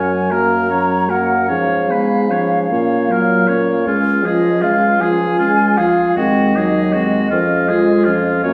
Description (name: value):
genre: classical, slow romantic movement for wind quintet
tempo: 52 BPM (dotted quarters)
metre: 6/8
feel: rubato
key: unclear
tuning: A4 = 439 Hz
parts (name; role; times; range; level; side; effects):
- mellow hollow silver concert flute; melody; 0.0-8.4 s; D#5 to A#5; -22 LUFS; equal; none
- clear oboe; second line; 0.0-8.5 s; E#4 to C#5; -22 LUFS; equal; none
- clear French horn; accompaniment; 0.0-8.5 s; E#3 to A#3; -22 LUFS; equal; none
- mellow clarinet; accompaniment; 0.0-8.5 s; A#3 to F#4; -22 LUFS; equal; none
- dark bassoon; bass; 0.0-8.5 s; C#2 to A#2; -23 LUFS; equal; none
room: wet recital hall reverb, RT60 1.4 s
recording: recorded in a church or concert hall, small room ambience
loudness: -15 LUFS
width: mono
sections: 0.0-8.5 A section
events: none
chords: 0.0 F#; 1.5 C#7/G#; 2.7 F#/A#; 3.9 C#; 6.2 G#7/D#; 7.3 C#/E#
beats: 0.32 | 1.51 2.72 | 3.88 5.02 | 6.18 7.33 | 8.46